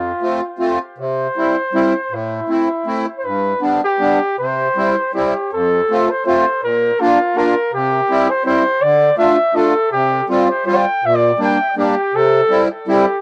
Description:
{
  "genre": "alpine folk",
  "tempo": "162 BPM",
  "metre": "3/4",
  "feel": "swing 55% on 8ths",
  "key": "C major",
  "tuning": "A4 = 443 Hz",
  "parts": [
    { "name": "warm flugelhorn", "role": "melody", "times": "0.0-13.2 s", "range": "E4 to G5", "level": "-19 LUFS", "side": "equal", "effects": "cassette tape, tape echo" },
    { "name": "accordion", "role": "accompaniment", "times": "0.0-13.1 s", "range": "F2 to F4", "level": "-19 LUFS", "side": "equal", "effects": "light tremolo tuning, cassette tape" }
  ],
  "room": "moderate booth ambience, RT60 0.2 s",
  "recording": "home recording on cassette",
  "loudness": "-16 LUFS",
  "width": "mono",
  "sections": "0.0-5.5 A section; 5.5-13.2 B section",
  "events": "none",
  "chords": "0.0 F; 1.0 C; 2.1 Am; 3.3 G; 4.4 C; 5.5 F; 6.6 Bb; 7.7 C; 8.8 Dm; 9.9 Csus4; 11.0 Gm/Bb; 12.1 C"
}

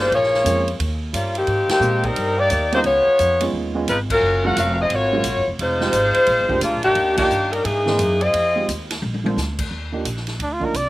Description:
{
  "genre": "jazz, big band swing",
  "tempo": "175 BPM",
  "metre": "4/4",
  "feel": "swing 64% on 8ths",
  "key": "Eb major",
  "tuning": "A4 = 435 Hz",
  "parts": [
    { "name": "bright saxophone section", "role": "melody", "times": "0.0-8.7 s", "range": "Eb3 to Gb5", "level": "-17 LUFS", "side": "left 1 dB", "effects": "slapback echo" },
    { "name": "warm upright piano", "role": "accompaniment", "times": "0.0-10.7 s", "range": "E3 to Bb4", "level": "-26 LUFS", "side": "right 4 dB", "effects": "slapback echo" },
    { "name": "upright bass", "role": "bass", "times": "0.0-10.9 s", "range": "F1 to Bb2", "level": "-25 LUFS", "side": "equal", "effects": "none" },
    { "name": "swinging big-band drum kit", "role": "drums", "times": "0.1-10.8 s", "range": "crash cymbal, hi-hat, kick drum, ride cymbal, snare drum, toms", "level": "-29 LUFS", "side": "equal", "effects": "none" },
    { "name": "clear trumpet", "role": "melody", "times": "10.4-10.9 s", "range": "D4 to D5", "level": "-22 LUFS", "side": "right 1 dB", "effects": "none" }
  ],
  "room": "little or no reverb",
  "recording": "recorded outdoors, with no room sound",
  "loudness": "-17 LUFS",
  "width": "side -17 dB against mid",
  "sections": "0.0-9.7 A section; 9.7-10.9 B section",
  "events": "band accent 1.6, 4.0, 7.1; drum fill 9.0-9.4; trumpet solo 9.7-10.9",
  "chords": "0.1 Bbm7; 0.8 Eb7; 1.5 Abmaj9; 2.8 Db9; 4.2 Gbmaj7; 5.6 Fm7; 6.3 Bb7; 7.0 Ebmaj7; 7.6 C7alt; 8.3 Fm7; 9.0 Bbadd9; 9.7 Ebmaj7(no3)"
}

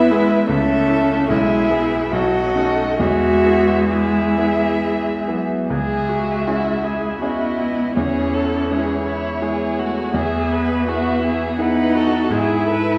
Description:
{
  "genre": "classical, slow romantic movement for piano quintet",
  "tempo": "65-84 BPM",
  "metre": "3/4",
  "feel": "rubato",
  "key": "E major, C# minor from 5.7 s",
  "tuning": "A4 = 440 Hz",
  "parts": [
    { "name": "muted violin", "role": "melody", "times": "0.0-13.0 s", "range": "E4 to E5", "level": "-27 LUFS", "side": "equal", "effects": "none" },
    { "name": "muted cello", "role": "second line", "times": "0.0-13.0 s", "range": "F#3 to F#4", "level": "-23 LUFS", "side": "equal", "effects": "none" },
    { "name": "muted violin", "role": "second line", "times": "0.0-13.0 s", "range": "G#4 to F#5", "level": "-29 LUFS", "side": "equal", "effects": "none" },
    { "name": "bright concert grand piano", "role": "accompaniment", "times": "0.0-13.0 s", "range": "B1 to A4", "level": "-25 LUFS", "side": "equal", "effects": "none" },
    { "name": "muted viola", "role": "accompaniment", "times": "0.0-13.0 s", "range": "F#3 to A4", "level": "-26 LUFS", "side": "equal", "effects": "none" }
  ],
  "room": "wet recital hall reverb, RT60 1.5 s",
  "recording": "heard from further back in the room",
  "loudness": "-19 LUFS",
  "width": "mono",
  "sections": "0.0-5.7 A section; 5.7-13.0 B section",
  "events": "none",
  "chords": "0.5 A/C#; 1.3 E/B; 2.1 B9; 3.0 E; 5.7 C#m; 8.0 C#m/E; 10.1 E; 12.3 E/G#"
}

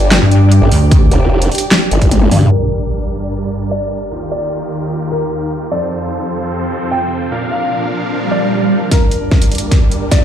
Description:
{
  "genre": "heavy wobble dubstep",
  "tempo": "150 BPM",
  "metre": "4/4",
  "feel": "half-time",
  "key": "G minor",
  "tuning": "A4 = 440 Hz",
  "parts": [
    { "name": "supersaw chords", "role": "sustained chords", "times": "0.0-10.2 s", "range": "Eb2 to F5", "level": "-21 LUFS", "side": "right 1 dB", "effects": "sidechain pumping, low-pass filter" },
    { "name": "formant-sweep wobble bass", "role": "bass", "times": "0.0-2.5 s", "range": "F1 to G2", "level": "-11 LUFS", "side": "equal", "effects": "chorus, overdrive" },
    { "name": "granular cloud pad", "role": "texture", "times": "0.0-10.2 s", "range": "C4 to G5", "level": "-24 LUFS", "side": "right 1 dB", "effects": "built-in reverb, sidechain pumping" },
    { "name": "dubstep drum kit", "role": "drums", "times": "0.1-2.6, 8.9-10.2 s", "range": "crash cymbal, handclaps, hi-hat, snare drum, toms", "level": "-15 LUFS", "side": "equal", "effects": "high-pass filter on hats, high-pass filter on snare, high-pass filter on toms, high-pass filter on cymbals" },
    { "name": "pulsing pluck wobble bass", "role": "bass", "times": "0.2-1.1 s", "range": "D2 to G2", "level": "-8 LUFS", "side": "equal", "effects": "chorus, overdrive" },
    { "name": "electronic kick drum", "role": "drums", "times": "0.9-2.1, 8.9-10.2 s", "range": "none", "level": "-11 LUFS", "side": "equal", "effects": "none" },
    { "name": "dark concert grand piano", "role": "melody", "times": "2.5-10.2 s", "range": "Bb4 to G5", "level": "-21 LUFS", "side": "left 1 dB", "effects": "ping-pong delay" },
    { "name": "impact, swell and riser", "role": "sound effects", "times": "2.5-4.1, 8.3-10.2 s", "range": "none", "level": "-19 LUFS", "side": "right 1 dB", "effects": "none" }
  ],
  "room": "light reverb",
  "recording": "played on a big sound system in a bare room, large studio reverb, low-pass filter",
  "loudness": "-12 LUFS",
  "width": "side -9 dB against mid",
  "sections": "0.0-2.5 A section; 2.5-8.9 B section; 8.9-10.2 C section",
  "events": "drop 0.0-2.5; kick drops out 2.1-2.5; drum fill 2.1-2.5, 8.9-10.2; impact 2.5-4.1; filter sweep 2.5-8.9; swell 8.3-8.9; build-up 8.9-10.2; filter sweep on supersaw synth 8.9-10.2",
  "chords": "0.0 G5; 2.5 Gm; 4.1 Ebadd9; 5.7 F; 7.3 Bb; 8.9 Gm"
}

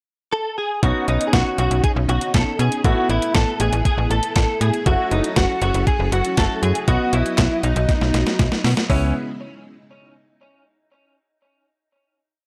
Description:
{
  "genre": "synth-pop",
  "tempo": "119 BPM",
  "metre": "4/4",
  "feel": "straight",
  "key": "C# minor",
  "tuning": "A4 = 440 Hz",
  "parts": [
    { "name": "direct-recorded clean electric guitar", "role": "melody", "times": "0.3-9.1 s", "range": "C#4 to A4", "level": "-25 LUFS", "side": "equal", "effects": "ensemble chorus" },
    { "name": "bright baby grand piano", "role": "accompaniment", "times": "0.8-9.1 s", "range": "A3 to D#5", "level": "-30 LUFS", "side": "equal", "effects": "none" },
    { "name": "string machine, full ensemble", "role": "sustained chords", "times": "0.8-9.1 s", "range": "C#3 to D#5", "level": "-31 LUFS", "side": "equal", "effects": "ensemble chorus" },
    { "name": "slap-like FM bass", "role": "bass", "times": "0.8-9.1 s", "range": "F#1 to B2", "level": "-22 LUFS", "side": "equal", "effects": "none" },
    { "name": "clean 12-bit digital drum machine", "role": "drums", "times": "0.8-9.0 s", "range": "handclaps, hi-hat, kick drum, snare drum", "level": "-22 LUFS", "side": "equal", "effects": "overdrive" }
  ],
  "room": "digital ambience",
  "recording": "dry, gritty hardware recording",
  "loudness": "-19 LUFS",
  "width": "mono",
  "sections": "0.0-0.8 pickup bar; 0.8-8.9 pre-chorus; 8.9-10.9 final chord",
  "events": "drum fill 7.9-8.9",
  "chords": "0.0 N.C.; 0.8 Badd9; 2.8 Asus2; 4.9 F#m7; 6.9 B; 8.9 C#m7"
}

